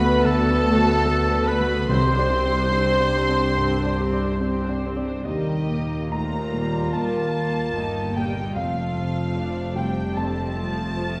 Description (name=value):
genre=cinematic, emotional film score for orchestra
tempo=72 BPM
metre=4/4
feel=rubato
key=Eb lydian from 5.3 s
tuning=A4 = 440 Hz
part: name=dark studio violin section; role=melody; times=0.0-11.2 s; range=G4 to C6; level=-32 LUFS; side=equal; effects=none
part: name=clear oboe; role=second line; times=0.0-4.8 s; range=A4 to C5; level=-30 LUFS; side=equal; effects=none
part: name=dark studio violin section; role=second line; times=0.0-11.2 s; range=A4 to Bb5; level=-33 LUFS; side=equal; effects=none
part: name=hollow large flute ensemble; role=second line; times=0.0-4.8 s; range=A4 to C5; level=-31 LUFS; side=equal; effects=none
part: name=dark concert grand piano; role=accompaniment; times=0.0-11.2 s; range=C2 to Bb5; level=-32 LUFS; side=equal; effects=none
part: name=warm studio viola section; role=accompaniment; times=0.0-11.2 s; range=F3 to C5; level=-32 LUFS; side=equal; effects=none
part: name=mellow French horn section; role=sustained chords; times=0.0-11.2 s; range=Bb2 to D4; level=-30 LUFS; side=equal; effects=none
part: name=warm studio cello section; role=bass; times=0.0-11.2 s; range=C2 to G2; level=-33 LUFS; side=equal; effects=none
part: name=warm studio double bass section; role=bass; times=0.0-11.2 s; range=F1 to Eb2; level=-30 LUFS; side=equal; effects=none
part: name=timpani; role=percussion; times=1.9-3.1 s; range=C3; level=-30 LUFS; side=equal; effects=none
room=wet recital hall reverb, RT60 1.8 s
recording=none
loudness=-23 LUFS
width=mono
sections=0.0-5.3 A section; 5.3-11.2 B section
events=none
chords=0.0 Bm7/D; 1.9 Csus2; 5.3 Eb; 8.6 Fadd9